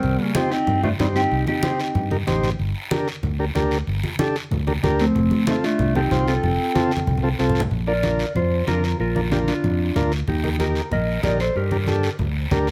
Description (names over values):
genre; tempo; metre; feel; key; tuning
latin, cumbia; 187 BPM; 4/4; straight; Bb major; A4 = 438 Hz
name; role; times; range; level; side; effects
mellow electric guitar; melody; 0.0-2.1, 5.0-12.2 s; G3 to Eb5; -26 LUFS; equal; spring reverb
breathy clarinet; second line; 0.0-2.1, 5.0-7.5 s; Eb3 to C4; -28 LUFS; equal; none
fingered electric bass; bass; 0.0-12.7 s; F1 to G2; -26 LUFS; equal; none
congas; percussion; 0.0-12.7 s; none; -29 LUFS; equal; none
guiro; percussion; 0.0-12.7 s; none; -36 LUFS; equal; none
combo organ; accompaniment; 0.3-12.7 s; C4 to C5; -27 LUFS; equal; none
room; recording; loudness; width
light reverb; none; -21 LUFS; mono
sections
0.0-7.7 A section; 7.7-12.7 B section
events
drum fill 2.1-2.6, 6.8-7.7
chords
0.0 Cm; 2.6 Gm; 5.2 F; 7.7 Bb; 10.3 Eb; 11.6 Gm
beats
| 0.03 0.35 0.67 0.99 | 1.31 1.63 1.95 2.27 | 2.59 2.91 3.23 3.56 | 3.88 4.20 4.51 4.83 | 5.15 5.47 5.79 6.11 | 6.43 6.75 7.07 7.39 | 7.71 8.03 8.35 8.67 | 8.99 9.31 9.63 9.95 | 10.27 10.59 10.91 11.23 | 11.55 11.87 12.19 12.51